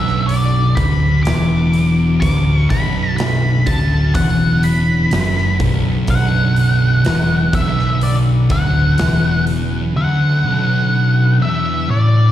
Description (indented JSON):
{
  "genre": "stoner and doom metal",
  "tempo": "62 BPM",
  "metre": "4/4",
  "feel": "straight",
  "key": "B minor",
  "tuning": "A4 = 439 Hz",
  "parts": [
    { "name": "octave-fuzz lead guitar", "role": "melody", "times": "0.0-12.3 s", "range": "D5 to D6", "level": "-21 LUFS", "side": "left 1 dB", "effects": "distortion, slapback echo, analog delay" },
    { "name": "ensemble organ-string", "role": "sustained chords", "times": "0.0-12.3 s", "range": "C#3 to F#3", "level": "-28 LUFS", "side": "equal", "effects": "ensemble chorus" },
    { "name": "thick fuzz guitar", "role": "riff", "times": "0.0-12.3 s", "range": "B1 to A2", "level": "-18 LUFS", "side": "left 5 dB", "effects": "distortion" },
    { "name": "thick fuzz guitar", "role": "riff", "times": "0.0-12.3 s", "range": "B1 to A2", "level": "-17 LUFS", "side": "right 4 dB", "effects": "distortion" },
    { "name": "fingered electric bass", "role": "bass", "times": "0.0-9.9 s", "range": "B0 to F#1", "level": "-21 LUFS", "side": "equal", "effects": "overdrive" },
    { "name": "big rock drum kit", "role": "drums", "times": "0.1-9.7 s", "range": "hi-hat, kick drum, snare drum", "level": "-23 LUFS", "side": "equal", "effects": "none" }
  ],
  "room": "small room reverb",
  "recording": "live gig heard through the venue's PA, recital hall reverb",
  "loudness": "-13 LUFS",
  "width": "side -12 dB against mid",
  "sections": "0.0-12.3 A section",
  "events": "none",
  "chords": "0.0 Bm",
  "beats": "0.30 1.26 | 2.22 3.19 4.15 5.12 | 6.09 7.05 8.02 8.99 | 9.95 10.92 11.89"
}